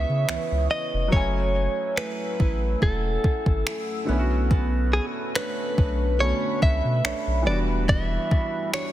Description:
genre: contemporary R&B.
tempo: 71 BPM.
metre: 4/4.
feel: swing 54% on 16ths.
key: unclear.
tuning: A4 = 439 Hz.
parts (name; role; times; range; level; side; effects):
direct-recorded clean electric guitar; melody; 0.0-8.9 s; G#4 to E5; -27 LUFS; equal; tremolo, ping-pong delay.
warm concert grand piano; accompaniment; 0.0-8.9 s; D3 to G#5; -31 LUFS; equal; none.
deep dark ambient pad; sustained chords; 0.0-8.9 s; G3 to E6; -34 LUFS; equal; chorus, built-in reverb.
fingerpicked plugged-in steel-string acoustic guitar; arpeggios; 0.0-8.9 s; C#3 to C#5; -34 LUFS; right 7 dB; none.
warm sub bass; bass; 0.0-8.2 s; E1 to C#3; -25 LUFS; equal; none.
smooth R&B drum kit; drums; 0.3-8.9 s; finger snaps, kick drum; -24 LUFS; equal; soft clipping on snare.
room: light reverb.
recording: dense, heavily limited modern master.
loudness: -21 LUFS.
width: side -13 dB against mid.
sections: 0.0-8.9 A section.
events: none.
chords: 0.0 C#m9; 1.1 F#m9; 4.1 Bm9; 7.5 Em9.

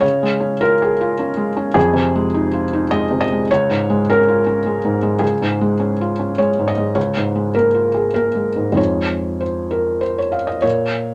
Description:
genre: neoclassical minimalist piano.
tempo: 95-106 BPM.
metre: 3/4.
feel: rubato.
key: unclear.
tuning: A4 = 440 Hz.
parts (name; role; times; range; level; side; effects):
felt-muted upright piano; solo; 0.0-11.1 s; Db2 to F5; -18 LUFS; equal; none.
room: moderate club reverb, RT60 0.6 s.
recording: none.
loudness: -18 LUFS.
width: mono.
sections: 0.0-10.6 A section.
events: none.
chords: 0.0 Db; 1.8 Fm7; 3.5 Db; 7.0 Bbm7/Db; 8.8 Fm7; 10.6 N.C..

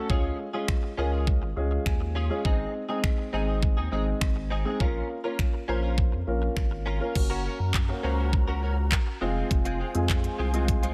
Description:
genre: dance-pop.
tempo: 102 BPM.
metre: 4/4.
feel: straight.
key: unclear.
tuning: A4 = 441 Hz.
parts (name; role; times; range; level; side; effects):
dark concert grand piano; accompaniment; 0.0-10.9 s; Ab3 to Ab5; -34 LUFS; equal; sidechain pumping.
direct-recorded clean electric guitar; riff; 0.0-10.9 s; Ab3 to Bb4; -38 LUFS; equal; ensemble chorus.
saturated sub bass; bass; 0.1-10.9 s; F1 to Gb2; -31 LUFS; equal; sidechain pumping.
pop drum kit; drums; 0.1-10.9 s; crash cymbal, finger snaps, handclaps, hi-hat, kick drum; -28 LUFS; equal; none.
breathy large flute ensemble; sustained chords; 7.2-10.9 s; Db4 to Bb5; -40 LUFS; equal; sidechain pumping.
room: little or no reverb.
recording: none.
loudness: -27 LUFS.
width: mono.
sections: 0.0-7.2 A section; 7.2-10.9 B section.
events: grand piano fill 1.3-2.4.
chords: 0.1 Db; 2.4 Ab; 4.8 Bbm; 7.2 Gb; 9.2 Fm.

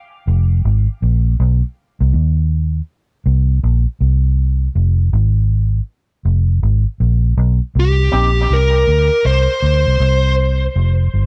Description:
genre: dub reggae.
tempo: 80 BPM.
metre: 4/4.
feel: swing 64% on 16ths.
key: C minor.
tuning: A4 = 442 Hz.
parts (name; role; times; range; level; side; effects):
vintage muted fingered electric bass; bass; 0.3-11.3 s; F1 to Eb2; -16 LUFS; equal; none.
high-gain lead guitar; melody; 7.8-10.3 s; G4 to C5; -19 LUFS; equal; distortion, dub echo.
electric guitar with an envelope filter; accompaniment; 8.1-8.3 s; C4 to G4; -26 LUFS; equal; high-pass filter, dub echo.
room: light reverb.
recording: none.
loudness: -15 LUFS.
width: mono.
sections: 0.0-7.7 A section; 7.7-11.3 B section.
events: break 0.0-7.7.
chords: 0.0 Fm; 1.8 Cm; 4.8 Fm; 7.7 C5; 10.7 N.C..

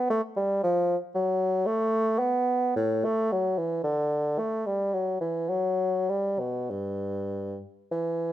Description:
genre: classical, baroque-style fantasia for unaccompanied bassoon.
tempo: 95-116 BPM.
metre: 3/4.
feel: rubato.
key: G major.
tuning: A4 = 444 Hz.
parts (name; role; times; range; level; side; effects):
mellow bassoon; solo; 0.0-8.3 s; G2 to B3; -25 LUFS; equal; none.
room: light reverb.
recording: none.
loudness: -25 LUFS.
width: side -12 dB against mid.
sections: 0.0-7.9 A section.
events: none.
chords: none.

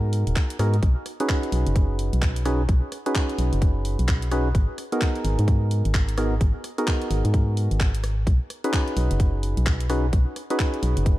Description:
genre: UK garage, two-step garage.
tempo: 129 BPM.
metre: 4/4.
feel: swing 61% on 16ths.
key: B major.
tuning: A4 = 440 Hz.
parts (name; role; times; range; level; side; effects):
percussive organ stab; stabs; 0.0-11.2 s; B3 to B4; -28 LUFS; right 1 dB; chorus, vintage 12-bit sampler grit, tape echo.
organ-like FM bass; bass; 0.0-11.2 s; D#1 to G#2; -22 LUFS; equal; sidechain pumping.
garage drum kit; drums; 0.1-11.2 s; handclaps, hi-hat, rim click; -32 LUFS; equal; small room ambience.
electronic kick drum; drums; 0.4-11.2 s; none; -22 LUFS; equal; small room ambience.
room: little or no reverb.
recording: dark, warm production.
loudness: -20 LUFS.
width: side -16 dB against mid.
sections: 0.0-11.2 A section.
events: none.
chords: 0.0 G#m7; 0.8 B69; 4.5 G#m7; 8.3 B69.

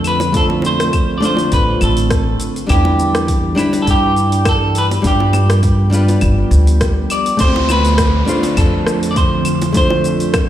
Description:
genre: sunset chillout.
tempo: 102 BPM.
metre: 4/4.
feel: swing 55% on 16ths.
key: D dorian.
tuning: A4 = 440 Hz.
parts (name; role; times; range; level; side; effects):
nylon-string guitar; accompaniment; 0.0-10.5 s; G3 to C5; -19 LUFS; equal; auto-pan, tape echo.
ethereal airy pad; sustained chords; 0.0-10.5 s; D3 to G4; -24 LUFS; equal; ensemble chorus, built-in reverb.
upright bass; bass; 0.0-10.5 s; G1 to G2; -16 LUFS; equal; none.
deep house drum kit; drums; 0.0-10.5 s; claves, hi-hat, rim click, shaker; -23 LUFS; left 1 dB; overdrive.
clean electric guitar; melody; 0.1-10.5 s; G4 to D5; -19 LUFS; equal; tape echo.
bongos; percussion; 0.2-10.0 s; none; -24 LUFS; right 1 dB; none.
electronic kick drum; drums; 0.3-10.5 s; none; -18 LUFS; equal; overdrive.
downlifter; sound effects; 7.4-10.5 s; none; -26 LUFS; equal; none.
room: light reverb, digital ambience.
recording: played on a big sound system in a bare room, stone room reverb.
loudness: -12 LUFS.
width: side -12 dB against mid.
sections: 0.0-7.4 A section; 7.4-10.5 B section.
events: none.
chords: 0.0 Dm7; 2.7 Em7; 5.0 G7; 7.4 Dm7.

